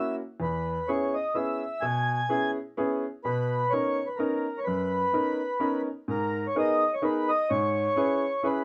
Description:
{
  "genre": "musette waltz",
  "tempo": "127 BPM",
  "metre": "3/4",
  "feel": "swing 54% on 8ths",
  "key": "B major",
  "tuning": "A4 = 439 Hz",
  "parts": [
    { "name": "mellow accordion", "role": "melody", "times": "0.0-8.6 s", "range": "A#4 to G#5", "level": "-30 LUFS", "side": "equal", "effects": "none" },
    { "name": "clear upright piano", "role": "accompaniment", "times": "0.0-8.6 s", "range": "E2 to B4", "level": "-31 LUFS", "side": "equal", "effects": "none" }
  ],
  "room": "light reverb",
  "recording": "close, detailed microphones",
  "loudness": "-28 LUFS",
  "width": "mono",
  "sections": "0.0-6.1 A section; 6.1-8.6 B section",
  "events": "none",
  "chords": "0.4 E6; 3.2 Bmaj9; 6.1 G#madd9; 7.5 C#m7/G#"
}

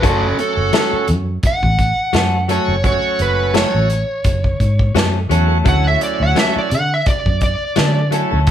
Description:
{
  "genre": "straight-eighth soul blues",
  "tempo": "85 BPM",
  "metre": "4/4",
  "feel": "swing 55% on 16ths",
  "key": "F# minor",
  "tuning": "A4 = 439 Hz",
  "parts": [
    { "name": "overdriven slide guitar", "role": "melody", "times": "0.0-8.1 s", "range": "C#4 to F#5", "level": "-19 LUFS", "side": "equal", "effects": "none" },
    { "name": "bright tonewheel organ", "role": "accompaniment", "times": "0.0-8.5 s", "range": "F#3 to F#4", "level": "-21 LUFS", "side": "right 7 dB", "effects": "overdrive, slow rotary speaker" },
    { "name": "direct-recorded clean electric guitar", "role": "stabs", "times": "0.0-8.5 s", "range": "F#3 to A4", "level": "-20 LUFS", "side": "left 6 dB", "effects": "none" },
    { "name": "vintage muted fingered electric bass", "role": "bass", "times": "0.0-8.5 s", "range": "F#1 to D3", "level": "-18 LUFS", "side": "equal", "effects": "none" },
    { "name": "warm soul drum kit", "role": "drums", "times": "0.0-8.5 s", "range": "hi-hat, kick drum, snare drum", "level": "-19 LUFS", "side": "equal", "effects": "none" }
  ],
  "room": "moderate large studio reverb, RT60 0.8 s",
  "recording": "band playing live in one room",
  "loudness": "-14 LUFS",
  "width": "side -10 dB against mid",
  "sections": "0.0-8.5 A section",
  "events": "electric slide guitar solo 0.0-8.5",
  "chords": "0.0 F#m; 5.7 Dmaj7"
}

